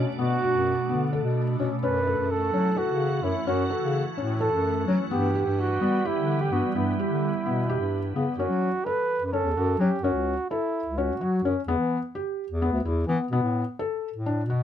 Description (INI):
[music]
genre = contemporary instrumental, chamber music in an uneven meter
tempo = 256 BPM (eighths)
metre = 7/8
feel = straight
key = unclear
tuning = A4 = 440 Hz
[part]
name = soft additive organ-like pad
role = sustained chords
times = 0.0-8.4 s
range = B2 to F#4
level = -32 LUFS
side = right 2 dB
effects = ensemble chorus, built-in reverb, phaser
[part]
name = felt-muted upright piano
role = arpeggios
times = 0.0-14.6 s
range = B3 to A4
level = -29 LUFS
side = left 3 dB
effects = none
[part]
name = mellow bass clarinet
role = bass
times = 0.0-14.6 s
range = C#2 to G3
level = -27 LUFS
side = left 1 dB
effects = none
[part]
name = mellow flugelhorn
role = melody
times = 0.2-11.5 s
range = E4 to B4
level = -27 LUFS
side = right 4 dB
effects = none
[sound]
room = little or no reverb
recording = close, detailed microphones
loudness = -23 LUFS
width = side -10 dB against mid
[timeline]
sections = 0.0-8.4 A section; 8.4-14.6 B section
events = none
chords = 0.0 Bm7; 1.8 F#m7; 5.1 G6; 8.4 F#m; 10.0 C#madd11; 11.7 Em; 13.3 B7(no3)